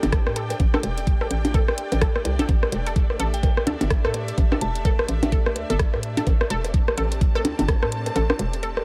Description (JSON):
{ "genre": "minimal techno", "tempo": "127 BPM", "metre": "4/4", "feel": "swing 60% on 16ths", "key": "A minor", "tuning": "A4 = 445 Hz", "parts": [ { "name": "hollow knocking FM bass", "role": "bass", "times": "0.0-8.8 s", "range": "E1 to A2", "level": "-29 LUFS", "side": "equal", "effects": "sidechain pumping" }, { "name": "garage drum kit", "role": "drums", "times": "0.0-8.7 s", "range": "hi-hat, rim click", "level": "-33 LUFS", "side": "equal", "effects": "none" }, { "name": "electronic percussion blips and rim click", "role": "percussion", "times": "0.0-8.8 s", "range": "none", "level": "-28 LUFS", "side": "equal", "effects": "tape echo" }, { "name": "bubbling stepped-filter texture", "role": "texture", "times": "0.0-8.8 s", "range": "A3 to D5", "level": "-43 LUFS", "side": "equal", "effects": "none" }, { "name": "rich studio string section", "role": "texture", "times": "0.0-8.8 s", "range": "D4 to A5", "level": "-36 LUFS", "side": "equal", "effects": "sidechain pumping" }, { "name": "electronic kick drum", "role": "drums", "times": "0.1-7.8 s", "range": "none", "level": "-23 LUFS", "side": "equal", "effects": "none" }, { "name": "resonant blip pluck", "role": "riff", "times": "0.4-8.7 s", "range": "A4", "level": "-35 LUFS", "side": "equal", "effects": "chorus, sidechain pumping, dub echo" }, { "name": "soft synth bell", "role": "melody", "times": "3.3-5.3 s", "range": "G5 to A5", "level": "-37 LUFS", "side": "equal", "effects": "chorus, phaser, tape echo" } ], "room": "little or no reverb", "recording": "none", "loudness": "-22 LUFS", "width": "mono", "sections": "0.0-8.8 A section", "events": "kick drops out 8.2-8.8", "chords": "0.0 Am", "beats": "0.12 | 0.60 1.07 1.54 2.02 | 2.49 2.96 3.43 3.90 | 4.38 4.85 5.32 5.79 | 6.27 6.74 7.21 7.68 | 8.16 8.63" }